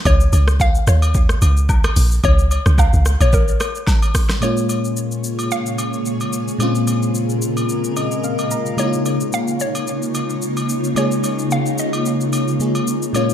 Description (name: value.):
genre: amapiano.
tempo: 110 BPM.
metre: 4/4.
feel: swing 55% on 16ths.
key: Bb minor.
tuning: A4 = 440 Hz.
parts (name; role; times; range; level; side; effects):
hollow square pluck; melody; 0.1-13.3 s; Bb4 to F5; -24 LUFS; left 2 dB; chorus, ping-pong delay.
deep log drum bass; bass; 0.1-3.5 s; Bb1 to Eb2; -14 LUFS; equal; none.
deep house drum kit; drums; 0.1-13.3 s; hi-hat, kick drum, rim click, shaker, snare drum; -19 LUFS; equal; none.
agogo bells and woodblock; percussion; 0.1-13.3 s; none; -28 LUFS; left 1 dB; none.
FM electric piano with soft pad layer; accompaniment; 4.4-13.3 s; Bb2 to Bb5; -21 LUFS; left 1 dB; chorus.
granular cloud pad; sustained chords; 5.1-13.3 s; Bb2 to Db5; -22 LUFS; equal; built-in reverb, sidechain pumping.
room: moderate plate reverb, RT60 1.5 s, digital ambience.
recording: dreamy mix soaked in reverb.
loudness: -15 LUFS.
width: side -10 dB against mid.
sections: 0.0-4.4 A section; 4.4-13.3 B section.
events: drop 0.0-4.4; FM electric piano fill 7.7-8.8.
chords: 0.1 N.C.; 4.4 Bbm9; 8.8 Db69.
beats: | 0.06 0.60 1.15 1.69 | 2.24 2.78 3.33 3.87 | 4.42 4.96 5.51 6.06 | 6.60 7.15 7.69 8.24 | 8.78 9.33 9.87 10.42 | 10.96 11.51 12.06 12.60 | 13.15.